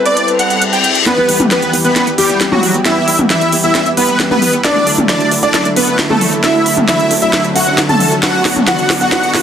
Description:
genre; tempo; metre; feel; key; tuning
uplifting trance; 134 BPM; 4/4; straight; E minor; A4 = 440 Hz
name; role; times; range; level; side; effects
glassy wavetable pluck; second line; 0.0-1.0 s; B4; -21 LUFS; left 4 dB; chorus, dub echo
lush unison pad; sustained chords; 0.0-9.4 s; D3 to A4; -18 LUFS; equal; chorus
supersaw chords; melody; 0.1-9.4 s; F#3 to A5; -14 LUFS; equal; ensemble chorus, dub echo
techno drum kit; drums; 0.1-9.4 s; hi-hat, snare drum, toms; -14 LUFS; equal; none
reverse cymbal and riser; sound effects; 0.3-9.4 s; none; -22 LUFS; left 4 dB; none
clear concert grand piano; second line; 1.1-9.4 s; F#4 to A5; -19 LUFS; right 1 dB; dub echo
plucky analog bass; bass; 1.2-9.4 s; B1 to E2; -25 LUFS; equal; none
room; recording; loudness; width
light reverb, digital ambience; dense, heavily limited modern master; -10 LUFS; side -8 dB against mid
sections
0.0-1.1 A section; 1.1-9.4 B section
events
filter sweep 0.0-1.1; reverse cymbal 0.3-1.1; build-up 1.1-9.4; drum fill 1.1-9.4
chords
0.0 C6; 1.1 Em; 4.6 Dadd9; 8.2 Bm

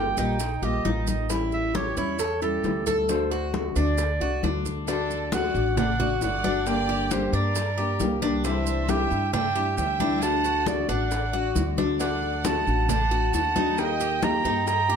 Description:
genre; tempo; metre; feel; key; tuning
latin, Cuban son and guajira; 135 BPM; 4/4; straight; unclear; A4 = 441 Hz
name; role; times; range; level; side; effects
clear clarinet; melody; 0.0-15.0 s; A4 to Bb5; -28 LUFS; right 4 dB; none
nylon-string guitar; accompaniment; 0.0-15.0 s; C3 to G4; -29 LUFS; left 4 dB; none
Cuban tres; arpeggios; 0.0-15.0 s; D4 to A4; -31 LUFS; equal; none
upright bass; bass; 0.0-15.0 s; G1 to G2; -29 LUFS; equal; none
congas; percussion; 0.2-15.0 s; none; -32 LUFS; left 2 dB; none
maracas; percussion; 0.2-14.9 s; none; -37 LUFS; right 9 dB; none
bongos; percussion; 0.4-14.9 s; none; -35 LUFS; left 5 dB; none
clear studio violin section; second line; 4.9-15.0 s; G4 to G5; -34 LUFS; equal; none
room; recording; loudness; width
moderate small room reverb, RT60 0.5 s; none; -22 LUFS; side -7 dB against mid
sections
0.0-4.9 A section; 4.9-15.0 B section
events
none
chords
0.0 Ebadd9/G; 1.3 A7; 3.1 D; 6.7 Gm; 8.4 Cadd9; 10.2 D; 13.8 Eb

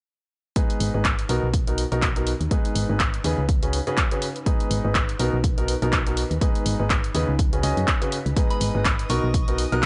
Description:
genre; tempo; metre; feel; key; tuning
piano house; 123 BPM; 4/4; swing 57% on 16ths; G# minor; A4 = 440 Hz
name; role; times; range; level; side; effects
clear concert grand piano; riff; 0.6-9.9 s; G#2 to D#5; -29 LUFS; equal; sidechain pumping
electronic kick drum; drums; 0.6-9.9 s; none; -26 LUFS; equal; small room ambience
punchy analog drum machine; drums; 0.6-9.9 s; handclaps, hi-hat; -30 LUFS; equal; small room ambience
ethereal airy pad; texture; 1.3-9.9 s; C#4 to A#5; -40 LUFS; equal; none
solid FM bass; bass; 0.8-9.9 s; G#1 to F#2; -27 LUFS; equal; sidechain pumping
dark studio string section; sustained chords; 8.4-9.9 s; D#5 to D#6; -40 LUFS; equal; sidechain pumping
jazz brush drum kit; drums; 8.4-9.9 s; none; barely audible; none; none
soft synth bell; melody; 8.5-9.9 s; B5 to F#6; -34 LUFS; equal; chorus, phaser, vintage 12-bit sampler grit
room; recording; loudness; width
small room ambience; dry, gritty hardware recording, transformer saturation, nothing above 10.8 kHz; -23 LUFS; mono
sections
0.6-9.9 A section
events
none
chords
0.6 G#m; 1.3 Bmaj7; 2.5 G#m; 3.5 C#7sus4; 4.5 G#m; 5.2 Bmaj7; 6.4 G#m; 7.4 C#7sus4; 8.4 G#m; 9.1 Bmaj7

